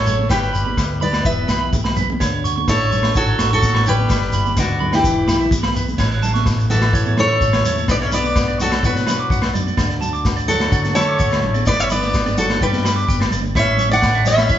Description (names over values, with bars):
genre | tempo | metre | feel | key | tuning
highlife guitar band | 127 BPM | 4/4 | straight | D major | A4 = 441 Hz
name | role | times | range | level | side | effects
fingerpicked steel-string acoustic guitar | melody | 0.0-14.6 s | D4 to F#5 | -19 LUFS | equal | none
edgy tenor saxophone | second line | 0.0-14.6 s | D3 to D4 | -29 LUFS | left 3 dB | none
mellow electric guitar | accompaniment | 0.0-14.6 s | F#2 to A4 | -28 LUFS | left 4 dB | tremolo
electric guitar at the edge of break-up | arpeggios | 0.0-14.6 s | B4 to D6 | -25 LUFS | right 6 dB | spring reverb
fingered electric bass | bass | 0.0-14.6 s | E1 to D3 | -22 LUFS | equal | none
congas | percussion | 0.1-14.4 s | none | -29 LUFS | right 4 dB | none
shekere | percussion | 0.1-14.6 s | none | -27 LUFS | left 1 dB | none
crunchy breakbeat drum kit | drums | 0.3-14.6 s | crash cymbal, kick drum, snare drum | -21 LUFS | equal | none
agogo bells | percussion | 0.3-14.5 s | none | -30 LUFS | left 7 dB | none
room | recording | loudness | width
wet large studio reverb, RT60 1.4 s | band playing live in one room, nothing above 7.6 kHz | -15 LUFS | side -11 dB against mid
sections
0.0-6.0 A section; 6.0-14.6 B section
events
none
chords
0.3 G6; 1.3 Em; 2.2 Dmaj7; 4.1 G6; 5.0 Em; 6.0 A; 7.9 Bm; 9.8 D; 11.7 G; 13.6 A